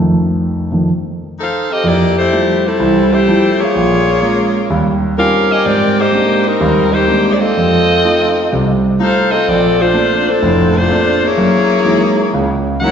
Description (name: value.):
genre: jazz.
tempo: 126 BPM.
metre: 4/4.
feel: swing 67% on 8ths.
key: F major.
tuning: A4 = 440 Hz.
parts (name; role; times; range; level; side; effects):
warm concert grand piano; accompaniment; 0.0-12.9 s; F1 to G4; -14 LUFS; right 1 dB; none.
warm saxophone section; melody; 1.4-12.9 s; F3 to Gb5; -13 LUFS; left 1 dB; none.
room: wet scoring stage reverb, RT60 1.7 s.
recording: heard from further back in the room, nothing above 7.8 kHz.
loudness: -11 LUFS.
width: side -7 dB against mid.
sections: 0.0-1.8 A section; 1.8-12.9 B section.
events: grand piano solo 0.0-1.8.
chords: 0.0 F7; 1.8 Fmaj9; 3.7 Bbm7; 4.7 Eb13; 5.7 Abmaj9#11; 7.6 F7; 9.5 Bbmaj9; 11.4 Gb13.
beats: 0.42 0.90 1.37 | 1.85 2.32 2.80 3.27 | 3.75 4.22 4.70 5.17 | 5.65 6.13 6.60 7.08 | 7.56 8.03 8.51 8.99 | 9.46 9.94 10.42 10.90 | 11.37 11.85 12.33 12.81.